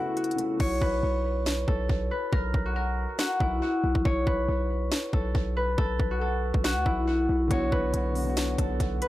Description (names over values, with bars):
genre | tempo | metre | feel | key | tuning
hip hop, trap | 139 BPM | 4/4 | half-time | unclear | A4 = 440 Hz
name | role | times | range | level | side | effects
concert harp | melody | 0.0-9.1 s | E4 to C#5 | -28 LUFS | left 1 dB | tape echo
dark grand piano | accompaniment | 0.0-0.6, 7.5-9.1 s | C#3 to F#4 | -34 LUFS | left 2 dB | tape echo
pipe organ, stopped flute | sustained chords | 0.0-0.6 s | B3 to A4 | -40 LUFS | right 2 dB | none
trap drum kit | drums | 0.2-9.1 s | crash cymbal, hi-hat, kick drum, snare drum | -28 LUFS | equal | none
hard-hitting 808-style bass | bass | 0.6-9.0 s | B1 to D2 | -29 LUFS | equal | none
room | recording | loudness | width
light reverb, small room ambience | echo-heavy mix | -24 LUFS | side -15 dB against mid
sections
0.6-9.1 A section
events
break 0.0-0.6; hi-hats muted 0.6-7.5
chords
0.0 F#m; 0.6 Aadd9/B; 5.8 F#m/B; 7.5 Bm